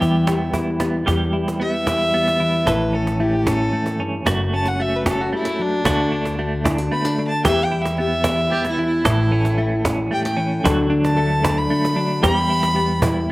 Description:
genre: acoustic folk duo or small band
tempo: 113 BPM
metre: 3/4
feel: straight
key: E dorian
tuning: A4 = 441 Hz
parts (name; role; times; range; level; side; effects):
- dark fiddle; melody; 0.0-13.3 s; D4 to B5; -23 LUFS; equal; none
- nylon-string guitar; accompaniment; 0.0-13.3 s; E2 to A4; -21 LUFS; left 2 dB; none
- semi-hollow electric guitar; arpeggios; 0.0-13.3 s; E3 to A4; -25 LUFS; right 2 dB; tremolo
- upright bass; bass; 0.0-13.3 s; F#1 to E2; -24 LUFS; equal; none
- cajon; percussion; 0.0-13.2 s; none; -25 LUFS; right 2 dB; none
- rich cello; second line; 8.5-9.9 s; E4 to G4; -24 LUFS; right 2 dB; slapback echo
room: little or no reverb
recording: recorded outdoors, with no room sound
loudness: -17 LUFS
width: side -19 dB against mid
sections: 0.0-1.1 A section; 1.1-13.3 B section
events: fiddle solo 1.1-13.3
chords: 0.0 Em; 2.7 A; 4.3 F#m; 5.9 D; 7.4 Em; 9.0 A; 10.6 D; 12.2 Em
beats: 0.01 0.54 | 1.07 1.60 2.13 | 2.66 3.19 3.73 | 4.26 4.79 5.32 | 5.85 6.38 6.91 | 7.45 7.98 8.51 | 9.04 9.57 10.11 | 10.64 11.17 11.70 | 12.24 12.77 13.30

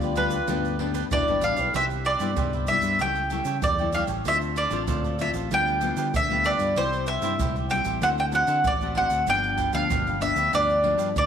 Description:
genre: samba and choro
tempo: 96 BPM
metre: 4/4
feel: straight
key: C major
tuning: A4 = 440 Hz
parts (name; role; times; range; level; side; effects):
- bowl-back mandolin; melody; 0.0-11.3 s; B4 to G5; -24 LUFS; right 1 dB; none
- breathy trombone; second line; 0.0-1.7 s; D4 to F4; -34 LUFS; left 10 dB; tape echo
- cavaquinho; accompaniment; 0.0-11.1 s; D4 to G5; -34 LUFS; right 11 dB; none
- nylon-string guitar; accompaniment; 0.0-11.3 s; G2 to F#4; -31 LUFS; left 12 dB; none
- fingered electric bass; bass; 0.0-11.3 s; F1 to D3; -31 LUFS; equal; none
- egg shaker, pandeiro and surdo; percussion; 0.0-11.3 s; none; -32 LUFS; right 4 dB; none
room: moderate echo chamber reverb, RT60 2.1 s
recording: 1960s-style stereo with parts hard left and right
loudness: -22 LUFS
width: side -8 dB against mid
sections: 0.0-1.7 A section; 1.7-11.3 B section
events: none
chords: 0.0 G; 1.7 Cmaj7; 3.0 A7/C#; 4.3 Dm7; 5.5 G7/D; 6.8 C; 8.0 D7; 9.3 G7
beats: 0.49 1.12 | 1.74 2.37 3.00 3.63 | 4.26 4.89 5.51 6.14 | 6.77 7.40 8.03 8.65 | 9.28 9.91 10.53 11.16

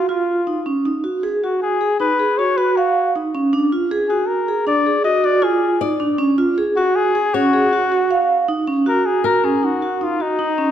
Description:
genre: contemporary instrumental, chamber music in an uneven meter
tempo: 157 BPM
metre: 7/4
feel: straight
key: Eb minor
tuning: A4 = 440 Hz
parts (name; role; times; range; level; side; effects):
- clear flugelhorn; melody; 0.0-10.7 s; Eb4 to Eb5; -20 LUFS; left 4 dB; none
- vibraphone with medium mallets; arpeggios; 0.0-10.7 s; Db4 to F5; -18 LUFS; right 3 dB; none
- flamenco guitar; texture; 5.8-10.2 s; Bb4 to D5; -25 LUFS; left 4 dB; none
room: moderate concert hall reverb, RT60 2.3 s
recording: dark, warm production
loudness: -15 LUFS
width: side -10 dB against mid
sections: 0.0-8.9 A section; 8.9-10.7 B section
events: none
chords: 0.0 Ebm9; 3.5 Bb7 (rootless); 6.2 Ebm11 (rootless); 8.9 Ebm7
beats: 0.10 0.48 | 0.86 1.24 1.62 2.00 2.38 2.77 3.15 | 3.53 3.91 4.29 4.67 5.05 5.43 5.81 | 6.20 6.58 6.96 7.34 7.72 8.10 8.48 | 8.86 9.24 9.62 10.01 10.39

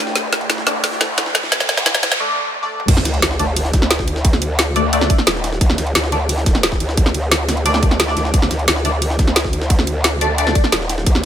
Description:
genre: dark technical drum and bass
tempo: 176 BPM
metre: 4/4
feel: straight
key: unclear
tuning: A4 = 439 Hz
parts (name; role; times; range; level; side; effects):
- deep dark ambient pad; sustained chords; 0.0-2.2 s; A3 to G5; -31 LUFS; left 1 dB; chorus, built-in reverb, sidechain pumping
- band-passed chord stab; stabs; 0.0-11.3 s; A3 to D5; -22 LUFS; left 2 dB; phaser, analog chorus, ping-pong delay
- growl bass; bass; 0.0-11.2 s; Eb1 to D2; -20 LUFS; equal; chorus, overdrive, high-pass filter
- riser, noise sweep and sub drop; sound effects; 0.0-4.2 s; none; -24 LUFS; right 1 dB; none
- jungle sampler-style drum kit; drums; 0.1-11.1 s; hi-hat, ride cymbal, snare drum; -27 LUFS; equal; high-pass filter on snare, high-pass filter on cymbals, high-pass filter on hats
- drum and bass drum kit; drums; 0.2-11.2 s; crash cymbal, hi-hat, snare drum, toms; -18 LUFS; equal; high-pass filter on hats, high-pass filter on snare, high-pass filter on toms, high-pass filter on cymbals, high-pass filter on room
- electronic kick drum; drums; 2.9-11.1 s; none; -15 LUFS; equal; none
room: light reverb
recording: high-pass filter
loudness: -14 LUFS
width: side -10 dB against mid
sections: 0.0-2.9 A section; 2.9-11.3 B section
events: build-up 0.0-2.9; drum fill 0.0-2.2, 2.5-2.9; riser 0.0-2.2; noise sweep 1.5-2.9; break 2.2-2.9; drop 2.9-11.3; impact 2.9-4.2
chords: 0.0 D5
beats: | 0.16 0.50 0.84 1.18 | 1.52 1.86 2.20 2.54 | 2.88 3.22 3.56 3.91 | 4.25 4.59 4.93 5.27 | 5.61 5.95 6.29 6.63 | 6.97 7.32 7.66 8.00 | 8.34 8.68 9.02 9.36 | 9.70 10.04 10.38 10.72 | 11.06

